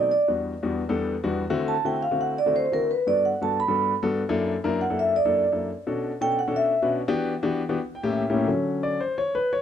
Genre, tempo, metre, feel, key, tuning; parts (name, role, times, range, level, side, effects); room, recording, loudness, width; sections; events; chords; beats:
jazz; 172 BPM; 4/4; straight; D major; A4 = 441 Hz
vibraphone with medium mallets; melody; 0.0-6.9 s; Bb4 to B5; -23 LUFS; right 2 dB; slapback echo
warm concert grand piano; accompaniment; 0.0-9.6 s; E2 to G5; -25 LUFS; left 3 dB
small room ambience; dry, close 1970s-style studio recording; -22 LUFS; side -9 dB against mid
0.0-8.5 A section; 8.5-9.6 A section
vibraphone solo 0.0-8.5; grand piano fill 7.8-8.5; grand piano solo 8.5-9.6
0.1 Em9; 1.5 D9; 2.9 Gmaj9; 4.3 F#7alt; 5.7 Bm9; 7.1 Em7; 7.8 A7b9; 8.5 Dmaj7
| 0.10 0.45 0.80 1.15 | 1.50 1.85 2.20 2.55 | 2.90 3.25 3.60 3.94 | 4.29 4.64 4.99 5.34 | 5.69 6.04 6.38 6.73 | 7.08 7.43 7.78 8.13 | 8.47 8.82 9.17 9.52